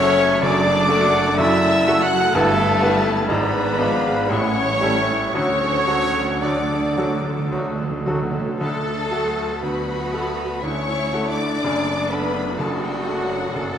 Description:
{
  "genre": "classical",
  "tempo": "54-65 BPM",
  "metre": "3/4",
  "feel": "rubato",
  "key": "D major",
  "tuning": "A4 = 439 Hz",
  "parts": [
    { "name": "clear grand piano", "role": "melody", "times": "0.0-13.8 s", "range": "F#1 to B4", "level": "-24 LUFS", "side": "left 2 dB", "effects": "none" },
    { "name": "dark symphonic violin section", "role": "melody", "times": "0.0-13.8 s", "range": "F#5 to F#6", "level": "-28 LUFS", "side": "left 2 dB", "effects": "none" },
    { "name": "concert flute", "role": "second line", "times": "0.0-8.1 s", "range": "D5 to F#5", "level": "-29 LUFS", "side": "equal", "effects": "none" },
    { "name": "dark symphonic violin section", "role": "second line", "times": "0.0-13.8 s", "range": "F#4 to F#5", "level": "-28 LUFS", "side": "left 2 dB", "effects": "none" },
    { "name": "warm clarinet", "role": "second line", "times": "0.0-8.2 s", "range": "E4 to F#4", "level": "-33 LUFS", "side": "left 1 dB", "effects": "none" },
    { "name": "warm oboe", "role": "second line", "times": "0.0-7.5 s", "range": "A4 to F#5", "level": "-27 LUFS", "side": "right 2 dB", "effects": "none" },
    { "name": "mellow bassoon", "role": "accompaniment", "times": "0.0-8.2 s", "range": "F#3 to B3", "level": "-29 LUFS", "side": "right 1 dB", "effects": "none" },
    { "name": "rich symphonic viola section", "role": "accompaniment", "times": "0.0-13.8 s", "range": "F#3 to A4", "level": "-31 LUFS", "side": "right 2 dB", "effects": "none" },
    { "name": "warm French horn section", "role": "sustained chords", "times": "0.0-13.8 s", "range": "F#3 to F#4", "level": "-25 LUFS", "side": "left 2 dB", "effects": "none" },
    { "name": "mellow trumpet", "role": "stabs", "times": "0.0-7.5 s", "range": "A4 to F#5", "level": "-25 LUFS", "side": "right 2 dB", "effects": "none" },
    { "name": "rich symphonic double bass section", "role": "bass", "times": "0.0-13.8 s", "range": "F#1 to D2", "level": "-31 LUFS", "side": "right 5 dB", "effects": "none" },
    { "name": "warm symphonic cello section", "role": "bass", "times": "0.0-13.8 s", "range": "F#2 to A4", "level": "-29 LUFS", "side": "right 4 dB", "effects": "none" },
    { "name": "timpani", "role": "percussion", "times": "5.3-10.1 s", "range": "D3", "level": "-30 LUFS", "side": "right 1 dB", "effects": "none" }
  ],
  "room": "wet scoring stage reverb, RT60 1.7 s",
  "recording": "none",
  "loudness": "-18 LUFS",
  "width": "side -9 dB against mid",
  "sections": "0.0-8.6 A section; 8.6-13.8 A section",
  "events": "timpani fill 5.3-8.6",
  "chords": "0.0 D/F#; 2.4 Em/G; 3.3 G#dim7; 4.3 A7; 5.3 D; 11.6 D/F#",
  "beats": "0.43 1.39 | 2.36 3.30 4.30 | 5.35 6.43 7.53 | 8.60 9.62 10.62 | 11.62 12.58 13.54"
}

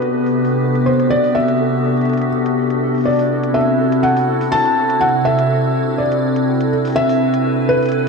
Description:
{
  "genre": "IDM",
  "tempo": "123 BPM",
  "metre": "4/4",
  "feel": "straight",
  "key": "unclear",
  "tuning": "A4 = 441 Hz",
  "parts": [
    { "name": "felt-muted upright piano", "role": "melody", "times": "0.0-8.1 s", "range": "B4 to A5", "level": "-18 LUFS", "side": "equal", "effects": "dub echo" },
    { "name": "icy glass pad", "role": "sustained chords", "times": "0.0-8.1 s", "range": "C3 to B4", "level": "-16 LUFS", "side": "left 1 dB", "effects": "chorus, built-in reverb" },
    { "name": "electronic hi-hat", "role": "drums", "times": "0.0-7.9 s", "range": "none", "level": "-42 LUFS", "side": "left 4 dB", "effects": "low-pass filter on perc, low-pass filter on hats, low-pass filter on snare, low-pass filter on toms, low-pass filter on room, dub echo" },
    { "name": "pulsing gated texture", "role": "texture", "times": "0.0-8.1 s", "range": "A4", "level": "-26 LUFS", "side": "right 3 dB", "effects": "chorus, built-in reverb" }
  ],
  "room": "wet echo chamber reverb, RT60 1.9 s",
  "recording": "dark, warm production",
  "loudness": "-14 LUFS",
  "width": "side -4 dB against mid",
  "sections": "0.0-8.1 A section",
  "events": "filter sweep on ambient pad 0.0-8.1",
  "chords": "0.0 Em7/C; 3.1 Dadd9/C; 7.0 Cmaj7",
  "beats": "0.14 0.63 | 1.12 1.61 2.10 2.58 | 3.07 3.56 4.05 4.53 | 5.02 5.51 6.00 6.49 | 6.97 7.46 7.95"
}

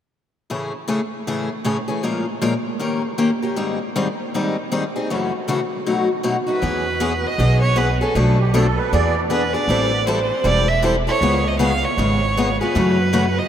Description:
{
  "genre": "acoustic string swing (jazz manouche)",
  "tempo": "157 BPM",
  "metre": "4/4",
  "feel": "swing 63% on 8ths",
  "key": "E major",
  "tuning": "A4 = 440 Hz",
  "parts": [
    { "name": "picked steel-string acoustic guitar", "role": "accompaniment", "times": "0.5-13.2 s", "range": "F#2 to A#4", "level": "-20 LUFS", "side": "left 2 dB", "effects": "none" },
    { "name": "rich violin", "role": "melody", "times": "6.5-13.5 s", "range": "A4 to E#5", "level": "-21 LUFS", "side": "right 3 dB", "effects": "none" },
    { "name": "upright bass", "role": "bass", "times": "6.6-13.4 s", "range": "E1 to F#2", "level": "-20 LUFS", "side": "right 1 dB", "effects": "none" },
    { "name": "musette accordion", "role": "second line", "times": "8.4-9.2 s", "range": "G4 to D5", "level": "-26 LUFS", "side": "right 4 dB", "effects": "none" }
  ],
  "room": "wet huge ambient reverb, RT60 7.5 s",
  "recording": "in a vast, echoing space",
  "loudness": "-17 LUFS",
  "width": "side -9 dB against mid",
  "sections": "0.5-6.6 A section; 6.6-13.5 B section",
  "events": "none",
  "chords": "0.5 Amaj7; 2.0 A#m7; 2.8 D#7; 3.6 G#maj7; 5.1 F#m7; 5.9 B7; 6.6 E6; 8.2 Bm7b5; 8.9 E7; 9.7 Am7; 11.2 C#7; 12.7 F#m7",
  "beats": "| 0.50 0.89 1.27 1.65 | 2.03 2.42 2.80 3.18 | 3.56 3.95 4.33 4.71 | 5.09 5.48 5.86 6.24 | 6.63 7.01 7.39 7.77 | 8.15 8.54 8.92 9.30 | 9.69 10.07 10.45 10.83 | 11.22 11.60 11.98 12.36 | 12.75 13.13"
}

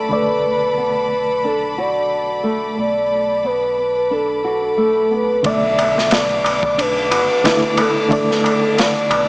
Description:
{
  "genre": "trip hop",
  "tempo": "90 BPM",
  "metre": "4/4",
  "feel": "swing 55% on 16ths",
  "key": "B minor",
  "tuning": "A4 = 439 Hz",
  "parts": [
    { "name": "reed electric piano", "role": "accompaniment", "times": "0.0-9.3 s", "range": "D3 to D5", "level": "-22 LUFS", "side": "equal", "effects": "fast tremolo" },
    { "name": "clear studio violin section", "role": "sustained chords", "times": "0.0-9.3 s", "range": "B3 to D6", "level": "-25 LUFS", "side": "left 1 dB", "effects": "none" },
    { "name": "nylon-string guitar", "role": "arpeggios", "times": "0.0-9.1 s", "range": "A3 to F#4", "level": "-24 LUFS", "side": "right 1 dB", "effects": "vintage 12-bit sampler grit, tape echo" },
    { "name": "deep dub fingered electric bass", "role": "bass", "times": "0.0-9.3 s", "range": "F#1 to B1", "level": "-35 LUFS", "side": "equal", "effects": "none" },
    { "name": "pure breathy sine lead", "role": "melody", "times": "0.1-9.3 s", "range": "A4 to E5", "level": "-17 LUFS", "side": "equal", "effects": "chorus, tape echo" },
    { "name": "crunchy breakbeat drum kit", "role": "drums", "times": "5.4-9.3 s", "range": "kick drum, ride cymbal, snare drum", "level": "-20 LUFS", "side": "equal", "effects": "none" },
    { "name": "darbuka", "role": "percussion", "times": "5.4-9.3 s", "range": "none", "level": "-23 LUFS", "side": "equal", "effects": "none" }
  ],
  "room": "light reverb, small room reverb",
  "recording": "small speaker sound",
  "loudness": "-14 LUFS",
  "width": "side -27 dB against mid",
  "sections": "0.0-5.4 A section; 5.4-9.3 B section",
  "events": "filter sweep on nylon-string guitar 0.0-5.4",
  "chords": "0.0 Bm7",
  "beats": "| 0.11 0.77 1.44 2.11 | 2.77 3.44 4.11 4.77 | 5.44 6.11 6.77 7.44 | 8.11 8.77"
}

